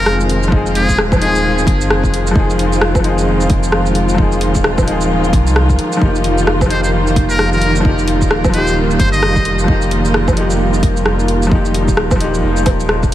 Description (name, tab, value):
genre	future garage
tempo	131 BPM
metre	4/4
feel	swing 60% on 16ths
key	unclear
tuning	A4 = 440 Hz
part	trumpet with metal mute	melody	0.0-1.7, 6.7-9.6 s	Ab4 to Eb5	-21 LUFS	left 1 dB	diffuse ambient delay
part	bright upright piano	accompaniment	0.0-13.1 s	F3 to Ab4	-20 LUFS	left 2 dB	vintage 12-bit sampler grit, sidechain pumping, diffuse ambient delay
part	dark studio string section	sustained chords	0.0-13.1 s	Eb3 to F4	-18 LUFS	right 1 dB	sidechain pumping
part	warm sub bass	bass	0.0-13.1 s	Eb1 to C2	-18 LUFS	equal	sidechain pumping
part	drifting glass-harmonics texture	texture	0.0-13.1 s	Bb3 to Bb4	-27 LUFS	left 4 dB	chorus, built-in reverb
part	garage drum kit	drums	0.1-13.1 s	hi-hat, rim click, shaker, woodblock	-20 LUFS	equal	none
part	electronic kick drum	drums	0.5-13.1 s	none	-14 LUFS	equal	none
room	moderate cathedral reverb, RT60 5.3 s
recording	dreamy mix soaked in reverb, vinyl crackle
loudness	-11 LUFS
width	side -13 dB against mid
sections	0.0-13.1 A section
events	none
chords	0.0 Fm7; 6.0 Ebadd9